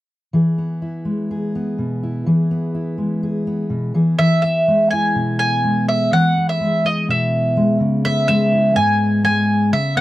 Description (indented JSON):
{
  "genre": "folk",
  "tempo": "124 BPM",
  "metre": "4/4",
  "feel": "straight",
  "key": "unclear",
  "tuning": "A4 = 440 Hz",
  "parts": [
    { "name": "fingerpicked steel-string acoustic guitar", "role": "accompaniment", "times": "0.3-10.0 s", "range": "G#2 to G#4", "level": "-18 LUFS", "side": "equal", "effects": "none" },
    { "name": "mandolin", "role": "melody", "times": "4.2-10.0 s", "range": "D#5 to G#5", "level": "-17 LUFS", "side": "right 1 dB", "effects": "none" }
  ],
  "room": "light reverb",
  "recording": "dry, close 1970s-style studio recording",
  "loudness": "-16 LUFS",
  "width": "side -16 dB against mid",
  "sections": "0.3-4.2 A section; 4.2-10.0 B section",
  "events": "none",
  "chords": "0.3 E; 7.8 C#m7",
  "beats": "| 0.33 0.81 1.29 1.78 | 2.26 2.74 3.23 3.71 | 4.19 4.67 5.15 5.63 | 6.12 6.60 7.08 7.56 | 8.04 8.53 9.01 9.49 | 9.97"
}